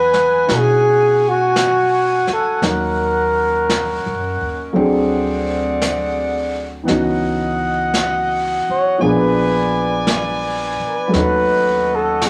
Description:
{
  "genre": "jazz",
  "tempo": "56 BPM",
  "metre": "4/4",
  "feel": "swing 68% on 8ths",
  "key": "unclear",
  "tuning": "A4 = 441 Hz",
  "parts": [
    { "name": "mellow flugelhorn", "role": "melody", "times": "0.0-12.3 s", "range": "F#4 to C#5", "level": "-18 LUFS", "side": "equal", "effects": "none" },
    { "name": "dark baby grand piano", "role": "accompaniment", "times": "0.0-12.3 s", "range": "E3 to B4", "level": "-24 LUFS", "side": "equal", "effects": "none" },
    { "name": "mellow saxophone section", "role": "sustained chords", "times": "0.0-12.3 s", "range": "C4 to G#5", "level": "-24 LUFS", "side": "equal", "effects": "none" },
    { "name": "upright bass", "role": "bass", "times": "0.0-12.3 s", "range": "A#1 to B2", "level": "-29 LUFS", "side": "equal", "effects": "none" },
    { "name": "jazz brush drum kit", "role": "drums", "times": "0.1-12.3 s", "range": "brushed snare drum, hi-hat, snare drum", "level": "-27 LUFS", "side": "equal", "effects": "none" }
  ],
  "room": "wet studio reverb, RT60 0.7 s",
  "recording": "none",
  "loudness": "-17 LUFS",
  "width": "mono",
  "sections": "0.0-12.3 A section",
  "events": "none",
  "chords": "0.0 Emaj9; 2.6 D#m7; 4.7 D7#11; 6.9 C#m11; 9.0 A#7b9; 11.1 D#m7b5",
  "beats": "0.49 1.55 | 2.62 3.68 4.75 5.81 | 6.88 7.94 9.01 10.07 | 11.14 12.20"
}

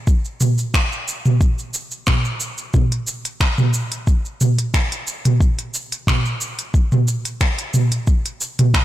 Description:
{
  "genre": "downtempo",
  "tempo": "90 BPM",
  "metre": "4/4",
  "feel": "straight",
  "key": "none",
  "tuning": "none",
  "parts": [
    { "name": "electronic kick drum", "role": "drums", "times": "0.1-8.8 s", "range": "none", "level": "-16 LUFS", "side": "equal", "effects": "none" },
    { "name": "organic electronic drum kit", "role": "drums", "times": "0.1-8.8 s", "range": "finger snaps, hi-hat, shaker, toms", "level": "-18 LUFS", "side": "right 1 dB", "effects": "soft clipping on snare" }
  ],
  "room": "light reverb",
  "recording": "blown-out, overdriven recording, overdrive",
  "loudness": "-17 LUFS",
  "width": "side -14 dB against mid",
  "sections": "0.0-8.8 A section",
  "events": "none",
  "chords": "none",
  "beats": "| 0.07 0.74 1.41 2.07 | 2.74 3.41 4.07 4.74 | 5.41 6.07 6.74 7.41 | 8.07 8.74"
}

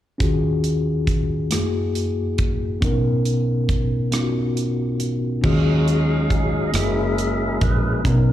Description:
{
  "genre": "slow gospel",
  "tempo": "46 BPM (dotted quarters)",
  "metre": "6/8",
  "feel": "straight",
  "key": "Eb minor",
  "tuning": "A4 = 440 Hz",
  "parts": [
    { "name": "mellow tine electric piano", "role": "accompaniment", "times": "0.2-8.3 s", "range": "B1 to A#4", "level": "-21 LUFS", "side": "left 1 dB", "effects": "medium stereo tremolo" },
    { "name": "modern studio drum kit", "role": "drums", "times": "0.2-8.3 s", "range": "crash cymbal, hi-hat, kick drum, rim click", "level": "-24 LUFS", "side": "right 1 dB", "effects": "none" },
    { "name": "tonewheel organ", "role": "sustained chords", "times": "5.4-8.3 s", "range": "Gb3 to F5", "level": "-24 LUFS", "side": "right 1 dB", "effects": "slow rotary speaker" },
    { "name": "fingered electric bass", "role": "bass", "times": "5.4-8.3 s", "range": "Gb1 to Eb2", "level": "-21 LUFS", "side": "right 1 dB", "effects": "none" }
  ],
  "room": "small room ambience",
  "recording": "live gig heard through the venue's PA, club reverb",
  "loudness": "-18 LUFS",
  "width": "side -12 dB against mid",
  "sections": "0.2-5.4 A section; 5.4-8.3 B section",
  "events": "tonewheel organ solo 5.4-8.3",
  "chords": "0.2 Ebm11; 1.5 Gb9; 2.8 Bmaj9; 5.4 Ebm11; 6.7 Gb9",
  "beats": "| 0.20 1.51 | 2.82 4.13 | 5.44 6.75 | 8.05"
}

